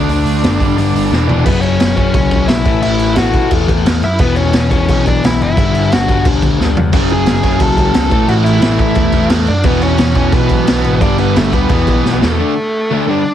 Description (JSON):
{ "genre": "punk rock", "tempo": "176 BPM", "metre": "4/4", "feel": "straight", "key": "A major", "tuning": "A4 = 439 Hz", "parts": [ { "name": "smooth overdriven lead guitar", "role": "melody", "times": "0.0-13.3 s", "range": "A3 to A5", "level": "-18 LUFS", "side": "equal", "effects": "none" }, { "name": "crunchy overdriven guitar", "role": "riff", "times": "0.0-13.2 s", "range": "E2 to D4", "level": "-17 LUFS", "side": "left 10 dB", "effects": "none" }, { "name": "distorted electric guitar", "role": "riff", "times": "0.0-1.5, 6.9-13.2 s", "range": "E2 to D4", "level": "-18 LUFS", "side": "right 11 dB", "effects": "distortion" }, { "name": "overdriven picked electric bass", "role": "bass", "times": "0.0-12.4 s", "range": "E1 to F#2", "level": "-17 LUFS", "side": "right 1 dB", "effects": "none" }, { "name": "raw garage drum kit", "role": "drums", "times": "0.1-12.3 s", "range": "crash cymbal, hi-hat, kick drum, snare drum, toms", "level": "-15 LUFS", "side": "right 1 dB", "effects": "none" } ], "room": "little or no reverb", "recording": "heavily compressed radio sound, multiband compression", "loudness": "-10 LUFS", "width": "side -10 dB against mid", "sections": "0.0-1.5 A section; 1.5-12.4 B section", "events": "drum fill 1.1-1.5, 6.6-6.9, 12.0-12.4", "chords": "0.0 D; 0.6 G5; 1.1 E5; 1.5 F#5; 2.7 A5; 4.2 E5; 5.6 G5; 6.9 F#m; 8.1 A5; 9.7 E; 11.0 G; 11.7 E5; 12.4 D5", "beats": "| 0.10 0.44 0.78 1.12 | 1.46 1.81 2.15 2.49 | 2.83 3.17 3.51 3.85 | 4.20 4.54 4.88 5.22 | 5.56 5.90 6.24 6.59 | 6.93 7.27 7.61 7.95 | 8.29 8.63 8.97 9.32 | 9.66 10.00 10.34 10.68 | 11.02 11.36 11.71 12.05 | 12.39 12.73 13.07" }